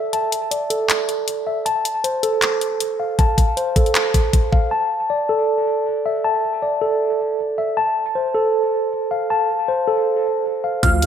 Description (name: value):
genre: hip hop, trap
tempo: 157 BPM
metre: 4/4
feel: half-time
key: unclear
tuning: A4 = 440 Hz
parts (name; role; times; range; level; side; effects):
- mellow tine electric piano; arpeggios; 0.0-11.1 s; A4 to A5; -18 LUFS; equal; medium stereo tremolo, low-pass filter, tape echo
- trap drum kit; drums; 0.1-4.6, 10.8-11.1 s; handclaps, hi-hat, kick drum; -18 LUFS; left 1 dB; none
- glassy synth bell; second line; 10.8-11.1 s; F6; -19 LUFS; right 1 dB; chorus, phaser
- dark concert grand piano; accompaniment; 10.8-11.1 s; F3 to A3; -23 LUFS; right 12 dB; low-pass filter
- distorted 808-style bass; bass; 10.8-11.1 s; D2 to F2; -18 LUFS; equal; distortion
room: moderate plate reverb, RT60 2.0 s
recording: dreamy mix soaked in reverb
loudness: -17 LUFS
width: side -8 dB against mid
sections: 0.0-4.7 A section; 4.7-11.1 B section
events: none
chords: 0.0 Asus4; 1.7 F; 4.7 Asus4; 7.8 F